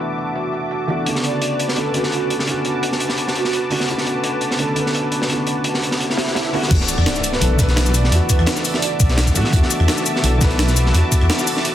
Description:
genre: liquid drum and bass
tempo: 170 BPM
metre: 4/4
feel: straight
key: unclear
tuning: A4 = 440 Hz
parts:
  - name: dark baby grand piano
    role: accompaniment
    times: 0.0-11.7 s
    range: C#3 to B4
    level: -22 LUFS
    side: equal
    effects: digital delay
  - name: warm analog pad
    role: sustained chords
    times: 0.0-11.7 s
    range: F#4 to D6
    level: -26 LUFS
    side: equal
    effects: chorus
  - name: breakbeat sampler-style drum kit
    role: drums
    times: 0.0-11.7 s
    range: crash cymbal, hi-hat, rim click, shaker, snare drum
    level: -24 LUFS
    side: left 1 dB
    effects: low-pass filter on hats, low-pass filter on cymbals, low-pass filter on perc, low-pass filter on snare, low-pass filter on room
  - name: crunchy breakbeat drum kit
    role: drums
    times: 1.1-11.7 s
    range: hi-hat, snare drum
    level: -23 LUFS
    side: equal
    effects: high-pass filter on hats, high-pass filter on snare, high-pass filter on room
  - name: breathy flute-like synth lead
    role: melody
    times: 1.2-3.9, 6.9-9.2 s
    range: F#4 to D5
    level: -26 LUFS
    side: right 2 dB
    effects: lush chorus, dub echo
  - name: swell and impact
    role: sound effects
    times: 6.1-8.1 s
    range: none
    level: -28 LUFS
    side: right 1 dB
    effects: none
  - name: dark detuned saw bass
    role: bass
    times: 6.7-11.3 s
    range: B1 to A2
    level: -16 LUFS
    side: equal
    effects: none
  - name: electronic kick drum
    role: drums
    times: 6.7-11.2 s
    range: none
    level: -17 LUFS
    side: equal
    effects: none
room: light reverb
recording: dense, heavily limited modern master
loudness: -16 LUFS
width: side -11 dB against mid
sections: 0.0-6.7 A section; 6.7-11.7 B section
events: swell 6.1-6.7; drop 6.7-11.7; impact 6.7-8.1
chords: 0.0 E9sus4; 1.1 Bm7; 6.7 E9sus4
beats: 0.00 0.35 0.71 | 1.06 1.41 1.77 2.12 | 2.47 2.83 3.18 3.53 | 3.88 4.24 4.59 4.94 | 5.30 5.65 6.00 6.36 | 6.71 7.06 7.41 7.77 | 8.12 8.47 8.83 9.18 | 9.53 9.88 10.24 10.59 | 10.94 11.30 11.65

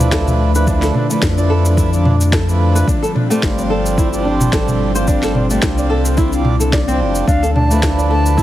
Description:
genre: organic downtempo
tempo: 109 BPM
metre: 4/4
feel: swing 55% on 16ths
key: D dorian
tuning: A4 = 438 Hz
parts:
  - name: pedal harmonium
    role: accompaniment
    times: 0.0-8.4 s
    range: F3 to D5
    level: -22 LUFS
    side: right 3 dB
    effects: sidechain pumping, digital delay
  - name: airy breathy pad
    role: sustained chords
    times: 0.0-8.4 s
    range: D3 to E4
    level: -22 LUFS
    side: left 2 dB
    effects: chorus, sidechain pumping
  - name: flamenco guitar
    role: arpeggios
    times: 0.0-8.4 s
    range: A3 to D5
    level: -21 LUFS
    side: equal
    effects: digital delay
  - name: warm sub bass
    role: bass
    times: 0.0-8.4 s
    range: F1 to F2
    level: -17 LUFS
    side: equal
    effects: sidechain pumping
  - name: afro-pop drum kit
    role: drums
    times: 0.0-8.4 s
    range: cabasa, snare drum, toms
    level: -21 LUFS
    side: equal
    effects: small room reverb
  - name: electronic kick drum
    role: drums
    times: 0.1-8.4 s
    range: none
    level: -18 LUFS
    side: equal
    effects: small room reverb
  - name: bright reedy bansuri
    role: melody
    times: 7.3-8.4 s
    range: F5 to A5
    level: -20 LUFS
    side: right 2 dB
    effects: none
room: light reverb, studio reverb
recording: heavily compressed radio sound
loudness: -12 LUFS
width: side -14 dB against mid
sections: 0.0-8.4 A section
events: none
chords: 0.0 Dm69; 2.9 G7sus4; 7.3 Dm69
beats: 0.12 | 0.67 1.22 1.77 2.33 | 2.88 3.43 3.98 4.53 | 5.08 5.63 6.18 6.73 | 7.28 7.83 8.38

